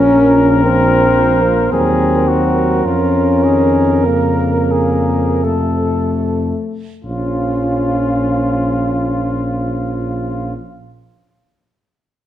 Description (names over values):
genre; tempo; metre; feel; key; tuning
classical, hymn-like piece for brass band; 35-58 BPM; 3/4; rubato; Bb minor; A4 = 440 Hz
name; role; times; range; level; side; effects
mellow cornet; melody; 0.0-10.5 s; F4 to Bb4; -21 LUFS; left 4 dB; none
mellow flugelhorn; second line; 0.0-10.5 s; F4 to C5; -22 LUFS; right 9 dB; none
dark trombone; accompaniment; 0.0-10.6 s; C3 to Gb3; -25 LUFS; right 4 dB; none
warm euphonium; accompaniment; 0.0-10.5 s; A3 to Db4; -16 LUFS; left 2 dB; none
mellow tuba; bass; 0.0-10.5 s; Bb1 to F2; -18 LUFS; equal; none
room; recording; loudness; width
wet recital hall reverb, RT60 1.4 s; dark, warm production; -12 LUFS; side -11 dB against mid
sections
0.0-7.0 A section; 7.0-11.5 B section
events
slowing down 0.0-7.0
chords
0.0 Bbm; 1.7 Cdim/Eb; 2.8 Bbm/F; 5.4 F; 7.0 Bbm